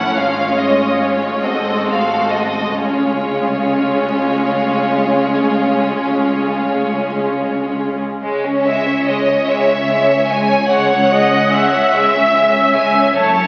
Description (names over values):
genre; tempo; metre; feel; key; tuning
classical, slow romantic movement for string orchestra; 42-50 BPM (dotted quarters); 12/8; rubato; Db major, C# minor from 8.2 s; A4 = 440 Hz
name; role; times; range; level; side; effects
warm symphonic violin section; melody; 0.0-13.5 s; Db5 to A5; -22 LUFS; equal; none
warm studio violin section; second line; 0.0-13.5 s; G#3 to Db5; -20 LUFS; equal; none
rich symphonic viola section; accompaniment; 0.0-13.5 s; E3 to E5; -20 LUFS; equal; none
warm symphonic cello section; bass; 0.0-13.5 s; C#2 to Db3; -26 LUFS; equal; none
warm symphonic double bass section; bass; 0.0-13.5 s; F#1 to Db2; -32 LUFS; equal; none
room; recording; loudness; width
wet scoring stage reverb, RT60 1.5 s; very old 78 rpm record, vinyl crackle, nothing above 7.6 kHz; -16 LUFS; mono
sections
0.0-8.2 A section; 8.2-13.5 B section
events
none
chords
0.2 Db/Ab; 1.4 Ab7b9; 2.8 Db; 8.2 C#m